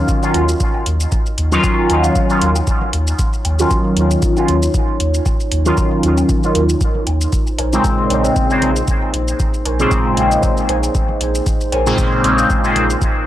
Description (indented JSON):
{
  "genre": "dub techno",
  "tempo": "116 BPM",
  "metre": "4/4",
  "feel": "swing 55% on 16ths",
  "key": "Eb dorian",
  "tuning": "A4 = 440 Hz",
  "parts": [
    { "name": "dark analog pad", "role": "sustained chords", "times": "0.4-13.3 s", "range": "Gb3 to Eb5", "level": "-25 LUFS", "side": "right 1 dB", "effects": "lush chorus, sidechain pumping" },
    { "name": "resonant sweep polysynth", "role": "stabs", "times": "0.0-12.8 s", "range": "Bb2 to F4", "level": "-16 LUFS", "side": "equal", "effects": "chorus, phaser, cassette tape, sidechain pumping, dub echo" },
    { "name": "soft dub sub bass", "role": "bass", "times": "0.0-13.0 s", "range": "Bb1 to Eb2", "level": "-18 LUFS", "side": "equal", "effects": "sidechain pumping" },
    { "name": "electronic kick drum", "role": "drums", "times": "0.1-13.1 s", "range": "none", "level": "-19 LUFS", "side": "equal", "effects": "none" },
    { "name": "electronic shaker and hi-hat", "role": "drums", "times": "0.1-13.1 s", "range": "none", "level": "-26 LUFS", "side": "equal", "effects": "none" },
    { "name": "congas and woodblock", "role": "percussion", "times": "0.3-12.9 s", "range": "none", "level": "-33 LUFS", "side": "right 1 dB", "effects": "none" },
    { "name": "warbly dusty pluck", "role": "riff", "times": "7.6-11.9 s", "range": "Bb4 to Ab5", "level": "-27 LUFS", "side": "left 1 dB", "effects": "phaser, wide subtle chorus, sidechain pumping, dub echo" }
  ],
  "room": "little or no reverb",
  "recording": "dry, gritty hardware recording, cassette tape",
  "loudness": "-13 LUFS",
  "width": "side -13 dB against mid",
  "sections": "0.0-13.3 A section",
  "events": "none",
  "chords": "0.0 Ebm9; 7.3 Bbm9",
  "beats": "0.09 0.60 | 1.12 1.64 2.15 2.67 | 3.19 3.71 4.22 4.74 | 5.26 5.78 6.29 6.81 | 7.33 7.84 8.36 8.88 | 9.40 9.91 10.43 10.95 | 11.46 11.98 12.50 13.02"
}